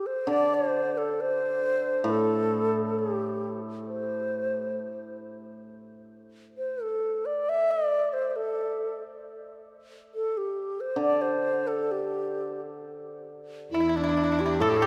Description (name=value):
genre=chinese traditional, Chinese chamber ensemble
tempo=67 BPM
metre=2/4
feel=rubato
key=unclear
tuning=A4 = 440 Hz
part: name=bright reedy low xiao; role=melody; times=0.0-14.9 s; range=D4 to E5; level=-30 LUFS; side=equal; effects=none
part: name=hammered dulcimer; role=accompaniment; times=0.3-4.7, 11.0-14.9 s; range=A2 to D3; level=-35 LUFS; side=equal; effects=none
part: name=bright large dizi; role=second line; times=13.7-14.9 s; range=D4 to A4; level=-30 LUFS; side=equal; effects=none
part: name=pipa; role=second line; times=13.7-14.9 s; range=E4 to A4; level=-33 LUFS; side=equal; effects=none
part: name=rich cello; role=second line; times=13.7-14.9 s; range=E2 to A2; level=-34 LUFS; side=equal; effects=none
room=wet cathedral reverb, RT60 5.2 s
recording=recorded in a church or concert hall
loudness=-28 LUFS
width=mono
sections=0.0-12.8 A section; 12.8-14.9 B section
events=none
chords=none